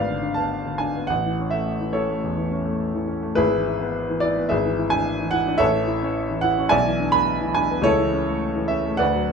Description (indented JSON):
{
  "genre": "classical, romantic character piece for solo piano",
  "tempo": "106 BPM",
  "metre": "4/4",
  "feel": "uneven beats, rubato",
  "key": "A major",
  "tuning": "A4 = 440 Hz",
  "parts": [
    { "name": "warm grand piano", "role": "solo", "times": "0.0-9.3 s", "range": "G#1 to B5", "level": "-20 LUFS", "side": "equal", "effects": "none" }
  ],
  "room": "light reverb",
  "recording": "dark, warm production",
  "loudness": "-20 LUFS",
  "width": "side -6 dB against mid",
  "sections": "0.0-9.3 A section",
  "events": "none",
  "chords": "0.0 G#dim; 1.1 A; 3.4 E/G#; 4.5 E7/G#; 5.6 A; 6.7 E5/B; 7.9 A/C#"
}